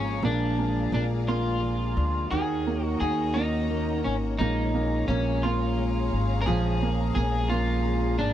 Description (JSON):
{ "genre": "six-eight pop ballad", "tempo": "58 BPM (dotted quarters)", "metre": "6/8", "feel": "straight", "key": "unclear", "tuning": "A4 = 440 Hz", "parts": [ { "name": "electric guitar at the edge of break-up", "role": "melody", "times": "0.0-8.3 s", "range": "Db4 to Bb4", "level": "-29 LUFS", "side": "left 1 dB", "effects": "lush chorus" }, { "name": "bright upright piano", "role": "accompaniment", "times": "0.0-8.3 s", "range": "Eb3 to Bb3", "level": "-30 LUFS", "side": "right 6 dB", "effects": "none" }, { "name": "clear studio string section", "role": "sustained chords", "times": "0.0-8.3 s", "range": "Gb4 to Bb5", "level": "-37 LUFS", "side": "left 4 dB", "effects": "none" }, { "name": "fingerpicked steel-string acoustic guitar", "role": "arpeggios", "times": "0.0-8.3 s", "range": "Eb3 to Gb4", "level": "-35 LUFS", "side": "left 8 dB", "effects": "none" }, { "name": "upright bass", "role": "bass", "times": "0.0-8.3 s", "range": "Ab1 to Eb2", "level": "-28 LUFS", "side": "equal", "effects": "none" } ], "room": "light reverb", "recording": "dry, close 1970s-style studio recording", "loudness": "-24 LUFS", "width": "side -11 dB against mid", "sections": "0.0-8.3 A section", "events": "none", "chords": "0.2 Bb7; 2.3 Ebm7; 4.4 Bbm7", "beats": "| 0.24 1.28 | 2.32 3.36 | 4.40 5.43 | 6.47 7.51" }